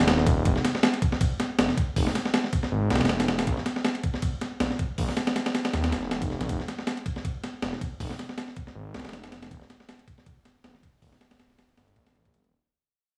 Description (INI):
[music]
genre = drum and bass, jungle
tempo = 159 BPM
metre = 4/4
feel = swing 55% on 16ths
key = unclear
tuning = A4 = 440 Hz
[part]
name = detuned saw bass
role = bass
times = 0.0-12.5 s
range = Eb1 to Eb2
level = -31 LUFS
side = equal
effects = none
[part]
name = breakbeat sampler-style drum kit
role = drums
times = 0.1-12.5 s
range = hi-hat, kick drum, ride cymbal, snare drum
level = -28 LUFS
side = equal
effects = small room ambience
[sound]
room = little or no reverb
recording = vinyl crackle, small room reverb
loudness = -27 LUFS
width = mono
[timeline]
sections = 0.5-12.5 A section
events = fade-out 0.5-12.5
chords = none